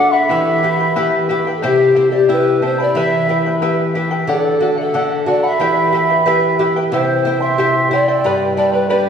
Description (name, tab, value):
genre	andean folk, Andean ensemble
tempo	91 BPM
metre	2/4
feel	straight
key	E minor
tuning	A4 = 439 Hz
part	mellow hollow polished pan flute	melody	0.0-9.1 s	G4 to F#5	-16 LUFS	left 1 dB	none
part	mellow hollow large quena	second line	0.0-9.1 s	C5 to D6	-22 LUFS	right 4 dB	none
part	charango	accompaniment	0.0-9.1 s	E4 to B5	-19 LUFS	left 2 dB	none
part	nylon-string guitar	accompaniment	0.0-9.1 s	G2 to B4	-20 LUFS	right 1 dB	none
room	wet church reverb, RT60 2.9 s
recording	recorded in a church or concert hall, studio ambience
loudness	-13 LUFS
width	side -7 dB against mid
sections	0.0-4.3 A section; 4.3-9.1 A section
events	none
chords	0.3 Em; 1.6 C; 3.0 Em; 4.3 D; 5.6 Em; 6.9 C; 8.2 G